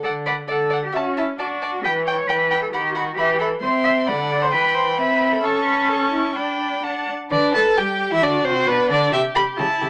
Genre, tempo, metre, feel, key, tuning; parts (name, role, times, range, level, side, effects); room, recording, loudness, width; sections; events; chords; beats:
quick classical-period movement for string quartet; 133 BPM; 2/4; straight; D major, G major from 3.6 s; A4 = 439 Hz
warm violin; melody; 0.0-9.9 s; B4 to C#6; -25 LUFS; equal
dark violin; second line; 0.0-9.9 s; B3 to A5; -26 LUFS; equal
warm viola; accompaniment; 0.0-9.9 s; D3 to B4; -27 LUFS; equal
warm cello; bass; 0.0-9.9 s; B2 to E5; -25 LUFS; equal
moderate studio reverb, RT60 0.7 s; -20 LUFS; mono
0.0-7.3 A section; 7.3-9.9 B section
0.0 D; 0.9 A/C#; 1.4 D; 1.8 Em; 2.7 B/D#; 3.2 Em; 3.6 C; 4.1 D7; 4.5 Em; 5.0 Am/C; 5.4 A/C#; 6.4 G/D; 7.3 G; 8.2 Bm; 9.1 C5
| 0.04 0.49 | 0.94 1.39 | 1.84 2.29 | 2.73 3.18 | 3.62 4.07 | 4.52 4.97 | 5.43 5.89 | 6.36 6.84 | 7.31 7.77 | 8.23 8.68 | 9.12 9.58